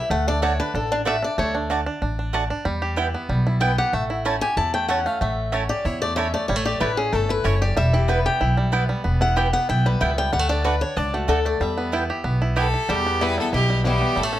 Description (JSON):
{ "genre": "bluegrass", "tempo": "188 BPM", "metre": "4/4", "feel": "straight", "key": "E dorian", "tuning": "A4 = 441 Hz", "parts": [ { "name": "picked swing-style acoustic guitar", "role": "accompaniment", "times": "0.0-1.5, 3.6-14.4 s", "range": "E2 to A5", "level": "-24 LUFS", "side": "left 3 dB", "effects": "none" }, { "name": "bluegrass banjo", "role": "arpeggios", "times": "0.0-14.4 s", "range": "E3 to G4", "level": "-27 LUFS", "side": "right 2 dB", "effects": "none" }, { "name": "upright bass", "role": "bass", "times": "0.1-14.4 s", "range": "E1 to E2", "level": "-24 LUFS", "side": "equal", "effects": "none" }, { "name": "mandolin", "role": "stabs", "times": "0.4-12.7 s", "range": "A3 to A5", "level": "-25 LUFS", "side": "right 4 dB", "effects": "none" }, { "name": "clear fiddle", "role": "melody", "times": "12.6-14.4 s", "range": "G4 to B4", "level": "-23 LUFS", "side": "right 1 dB", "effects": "none" } ], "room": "little or no reverb", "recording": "close, detailed microphones", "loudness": "-19 LUFS", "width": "side -13 dB against mid", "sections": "0.0-12.9 A section; 12.9-14.4 B section", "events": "steel-string acoustic guitar solo 0.0-12.9", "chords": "0.1 D; 2.7 Em; 3.9 A; 7.8 Em; 10.3 D; 11.6 Em" }